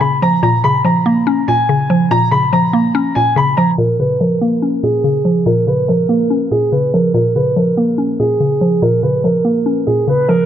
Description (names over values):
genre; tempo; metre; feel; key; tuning
hip hop; 143 BPM; 4/4; half-time; Bb phrygian; A4 = 439 Hz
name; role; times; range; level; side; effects
dark concert grand piano; melody; 0.0-10.4 s; Ab4 to Cb6; -15 LUFS; right 1 dB; low-pass filter, tape echo
mallet-like synth pluck; accompaniment; 0.0-10.5 s; Bb2 to Db4; -14 LUFS; equal; chorus, low-pass filter
room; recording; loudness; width
light reverb, small room ambience; low-pass filter; -12 LUFS; side -10 dB against mid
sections
0.0-3.8 A section; 3.8-10.5 B section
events
filter sweep 3.8-10.5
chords
0.0 Bbm